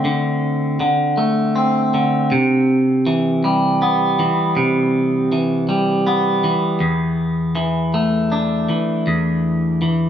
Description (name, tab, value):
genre	rock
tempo	53 BPM (dotted quarters)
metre	6/8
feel	straight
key	unclear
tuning	A4 = 440 Hz
part	clean electric guitar	solo	0.0-10.1 s	E2 to D4	-15 LUFS	equal	spring reverb
room	wet studio reverb, RT60 0.6 s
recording	band playing live in one room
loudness	-15 LUFS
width	side -9 dB against mid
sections	0.0-10.1 A section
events	none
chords	0.0 D5; 2.3 Cmaj7; 6.8 E7sus4